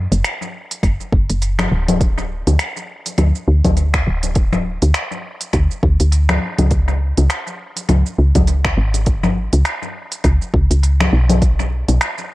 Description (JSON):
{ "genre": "organic downtempo", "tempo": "102 BPM", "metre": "4/4", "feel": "swing 58% on 16ths", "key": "unclear", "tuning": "A4 = 438 Hz", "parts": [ { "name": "woody FM bass", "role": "bass", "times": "0.0-12.0 s", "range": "D1 to D2", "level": "-15 LUFS", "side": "equal", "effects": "none" }, { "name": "organic electronic drum kit", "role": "drums", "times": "0.1-12.3 s", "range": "congas, finger snaps, hi-hat, shaker", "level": "-20 LUFS", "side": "left 2 dB", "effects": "analog delay" }, { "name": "electronic kick drum", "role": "drums", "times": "0.8-11.6 s", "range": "none", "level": "-18 LUFS", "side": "equal", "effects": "overdrive" } ], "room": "light reverb, digital ambience", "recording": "echo-heavy mix", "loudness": "-14 LUFS", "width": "side -18 dB against mid", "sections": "0.0-12.3 A section", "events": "none", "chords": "none", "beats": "0.24 0.83 1.42 | 2.01 2.60 3.18 3.77 | 4.36 4.95 5.54 6.12 | 6.71 7.30 7.89 8.48 | 9.06 9.65 10.24 10.83 | 11.42 12.01" }